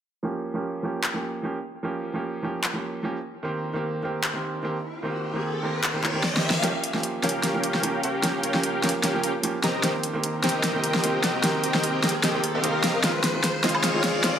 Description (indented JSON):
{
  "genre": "future bass",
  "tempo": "150 BPM",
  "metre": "4/4",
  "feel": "swing 54% on 16ths, half-time",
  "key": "unclear",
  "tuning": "A4 = 440 Hz",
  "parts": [
    { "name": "bright baby grand piano", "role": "accompaniment", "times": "0.2-14.4 s", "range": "Eb3 to G4", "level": "-28 LUFS", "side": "right 2 dB", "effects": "low-pass filter, digital delay" },
    { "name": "big-room dance drum kit", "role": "drums", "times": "1.0-14.3 s", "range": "finger snaps, handclaps, hi-hat, snare drum, woodblock", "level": "-25 LUFS", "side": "left 1 dB", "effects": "overdrive, studio reverb" },
    { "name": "riser", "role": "sound effects", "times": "4.6-14.4 s", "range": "none", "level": "-32 LUFS", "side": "left 1 dB", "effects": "none" },
    { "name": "dense compressed supersaw", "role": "riff", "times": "6.6-14.4 s", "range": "C4 to Bb5", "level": "-26 LUFS", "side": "equal", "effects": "low-pass filter, digital delay" }
  ],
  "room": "moderate digital room reverb, RT60 1.1 s",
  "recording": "high-pass filter",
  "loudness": "-23 LUFS",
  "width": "side -9 dB against mid",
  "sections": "0.2-6.6 A section; 6.6-14.4 B section",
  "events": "filter sweep on grand piano 0.2-6.6; riser 4.6-6.6, 6.6-14.4; drum fill 6.2-6.6, 6.6-14.4; build-up 6.6-14.4",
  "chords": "0.2 Gm7b5; 3.2 Cm7; 6.6 Gm7b5; 9.6 Cm7; 13.0 Fm7"
}